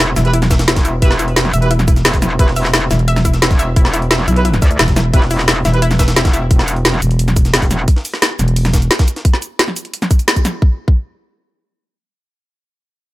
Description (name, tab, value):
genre	dark technical drum and bass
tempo	175 BPM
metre	4/4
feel	straight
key	E minor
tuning	A4 = 440 Hz
part	analog pluck	arpeggios	0.0-6.5 s	E4 to E5	-22 LUFS	left 2 dB	chorus, sidechain pumping, digital delay
part	metallic wobble bass	bass	0.0-7.9 s	E1 to D2	-16 LUFS	equal	chorus, tube saturation
part	bright brass ensemble	stabs	0.2-5.8 s	E4 to B4	-23 LUFS	right 2 dB	digital delay
part	growling FM bass	bass	0.2-8.9 s	E1 to B1	-14 LUFS	equal	none
part	drum and bass drum kit	drums	0.2-10.5 s	cabasa, hi-hat, snare drum	-16 LUFS	equal	none
part	jungle sampler-style drum kit	drums	0.2-9.2 s	hi-hat, snare drum	-25 LUFS	equal	high-pass filter on hats, high-pass filter on snare
part	electronic kick drum	drums	0.5-11.0 s	none	-12 LUFS	equal	none
room	little or no reverb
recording	none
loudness	-11 LUFS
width	side -17 dB against mid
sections	0.0-10.6 A section; 10.6-13.1 B section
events	drop 0.0-10.6; band accent 10.3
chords	none